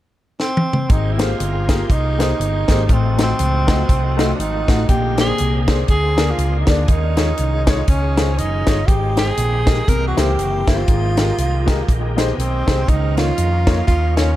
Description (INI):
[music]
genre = uptempo gospel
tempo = 120 BPM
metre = 4/4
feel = swing 58% on 8ths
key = Ab major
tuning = A4 = 441 Hz
[part]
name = breathy tenor saxophone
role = melody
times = 0.4-14.4 s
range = Cb4 to Bb4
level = -22 LUFS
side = right 2 dB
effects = tape echo
[part]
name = tight funk drum kit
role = drums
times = 0.4-14.3 s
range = hi-hat, kick drum, snare drum, toms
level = -17 LUFS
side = equal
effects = none
[part]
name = warm baby grand piano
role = accompaniment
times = 0.9-14.3 s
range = Ab2 to Gb5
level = -24 LUFS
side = left 4 dB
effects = tape echo
[part]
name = bright tonewheel organ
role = sustained chords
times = 0.9-14.4 s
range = D3 to G5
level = -30 LUFS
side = right 2 dB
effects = slow rotary speaker, overdrive, chorus vibrato
[part]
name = fingered electric bass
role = bass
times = 0.9-14.4 s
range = Gb1 to F2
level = -19 LUFS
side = equal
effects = none
[sound]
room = little or no reverb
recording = echo-heavy mix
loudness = -15 LUFS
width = side -14 dB against mid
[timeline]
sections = 0.9-14.4 A section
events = drum fill 0.4-0.9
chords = 0.0 N.C.; 0.9 Abmaj9; 2.9 F7b9/A; 4.9 Bb9; 6.9 Eb9sus4; 8.9 Abmaj7; 9.9 C7; 10.9 Fm11/Ab; 12.9 Db69